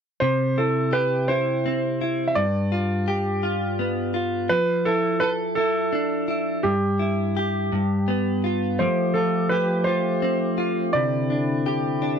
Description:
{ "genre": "pop", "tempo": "56 BPM (dotted quarters)", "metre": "6/8", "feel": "straight", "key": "C major", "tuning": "A4 = 443 Hz", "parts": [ { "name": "bright concert grand piano", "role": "melody", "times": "0.2-12.2 s", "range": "G4 to E5", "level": "-25 LUFS", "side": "right 2 dB", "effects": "none" }, { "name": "direct-recorded clean electric guitar", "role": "accompaniment", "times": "0.2-12.2 s", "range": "G2 to A4", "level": "-23 LUFS", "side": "equal", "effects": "double-tracked left and right" }, { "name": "percussive tonewheel organ", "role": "sustained chords", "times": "8.8-12.2 s", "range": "D3 to G4", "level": "-26 LUFS", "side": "left 2 dB", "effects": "slow rotary speaker" } ], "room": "light reverb", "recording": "dry, close 1970s-style studio recording", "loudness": "-20 LUFS", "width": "side -7 dB against mid", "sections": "0.2-12.2 A section", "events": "none", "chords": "0.2 C; 2.4 G7; 4.5 Dmadd9/F; 6.6 Em/G; 7.7 G7; 8.8 Fadd9; 10.9 Cadd9" }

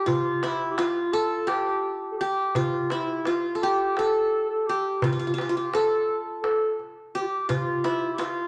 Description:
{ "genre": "Turkish makam ensemble", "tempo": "170 BPM (eighths)", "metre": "7/8", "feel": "straight", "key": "unclear", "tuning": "A4 = 437 Hz", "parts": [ { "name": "qanun", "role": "melody", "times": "0.0-8.5 s", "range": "E4 to A4", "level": "-29 LUFS", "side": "equal", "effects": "none" }, { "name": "mellow clarinet", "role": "second line", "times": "0.0-8.5 s", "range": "E4 to A4", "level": "-30 LUFS", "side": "equal", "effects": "none" }, { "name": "darbuka", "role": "percussion", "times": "0.1-8.4 s", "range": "none", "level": "-33 LUFS", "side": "equal", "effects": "none" } ], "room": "wet large studio reverb, RT60 1.3 s", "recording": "none", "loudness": "-26 LUFS", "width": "mono", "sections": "0.0-8.5 A section", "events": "none", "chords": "none" }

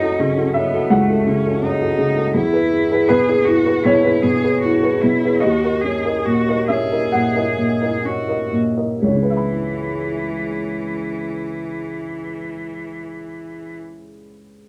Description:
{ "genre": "neoclassical piano and strings", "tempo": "60-85 BPM", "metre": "4/4", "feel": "rubato", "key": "C# minor", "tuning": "A4 = 441 Hz", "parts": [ { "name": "clear cello", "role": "second line", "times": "0.0-13.7 s", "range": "E3 to G#4", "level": "-27 LUFS", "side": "equal", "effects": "none" }, { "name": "dark upright piano", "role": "accompaniment", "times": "0.0-14.7 s", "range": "C#2 to B5", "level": "-19 LUFS", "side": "equal", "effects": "none" } ], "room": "moderate studio ambience, RT60 0.5 s", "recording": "none", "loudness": "-18 LUFS", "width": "mono", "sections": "0.0-9.0 A section; 9.0-13.0 B section", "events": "slowing down 0.9-9.0", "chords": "0.0 F#m; 2.3 E; 5.4 D#m7; 9.0 C#m7" }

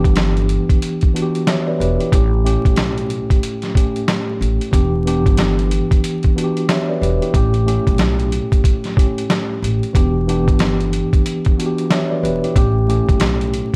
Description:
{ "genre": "hip hop, boom-bap hip-hop", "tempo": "92 BPM", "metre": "4/4", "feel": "swing 62% on 16ths", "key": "E dorian", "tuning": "A4 = 438 Hz", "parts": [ { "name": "mellow tine electric piano", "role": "accompaniment", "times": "0.0-13.8 s", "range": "A2 to E5", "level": "-22 LUFS", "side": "equal", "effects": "cassette tape, high-pass filter, low-pass filter" }, { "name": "upright bass", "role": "bass", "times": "0.0-13.6 s", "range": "E1 to B1", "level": "-22 LUFS", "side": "equal", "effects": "none" }, { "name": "boom bap sampler-style drum kit", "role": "drums", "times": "0.0-13.8 s", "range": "hi-hat, kick drum, snare drum", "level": "-19 LUFS", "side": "equal", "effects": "none" } ], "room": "light reverb", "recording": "vinyl crackle", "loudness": "-17 LUFS", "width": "mono", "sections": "0.0-13.8 A section", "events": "none", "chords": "0.0 Em7; 2.1 A7; 4.7 Em7; 7.3 A7; 9.9 Em7; 12.6 A7" }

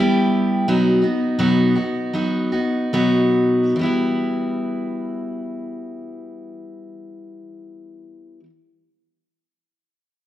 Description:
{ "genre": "folk", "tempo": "67-89 BPM", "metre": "4/4", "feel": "straight", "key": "E harmonic minor", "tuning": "A4 = 441 Hz", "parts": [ { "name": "picked steel-string acoustic guitar", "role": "accompaniment", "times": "0.0-8.5 s", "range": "B2 to G4", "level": "-19 LUFS", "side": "equal", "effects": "none" } ], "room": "wet large studio reverb, RT60 1.5 s", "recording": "none", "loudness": "-17 LUFS", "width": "side -13 dB against mid", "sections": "0.0-3.8 A section; 3.8-7.4 B section", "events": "slowing down 0.0-3.8", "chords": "0.0 Em/G; 0.7 B; 3.8 Emadd9" }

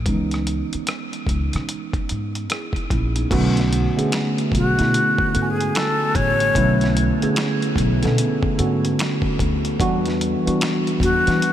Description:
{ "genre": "R&B, neo-soul", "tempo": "74 BPM", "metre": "4/4", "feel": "swing 62% on 16ths", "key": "B dorian", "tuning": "A4 = 439 Hz", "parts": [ { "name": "mellow tine electric piano", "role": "accompaniment", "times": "0.0-11.5 s", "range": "D3 to G#5", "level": "-21 LUFS", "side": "right 1 dB", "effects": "lush chorus" }, { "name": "upright bass", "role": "bass", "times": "0.0-11.4 s", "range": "A1 to E3", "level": "-23 LUFS", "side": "left 1 dB", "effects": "none" }, { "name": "dusty soul sampler-style drum kit", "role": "drums", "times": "0.1-11.5 s", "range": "crash cymbal, finger snaps, hi-hat, kick drum, rim click, snare drum", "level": "-25 LUFS", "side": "equal", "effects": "overdrive" }, { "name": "breathy concert flute", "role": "melody", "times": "4.6-11.5 s", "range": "F#4 to C#5", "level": "-22 LUFS", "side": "left 2 dB", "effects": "ping-pong delay" } ], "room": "light reverb, digital ambience", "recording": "none", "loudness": "-18 LUFS", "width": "side -11 dB against mid", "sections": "0.0-3.3 A section; 3.3-11.5 B section", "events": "none", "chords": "0.1 C#m9; 3.3 Bm9; 9.8 Em9" }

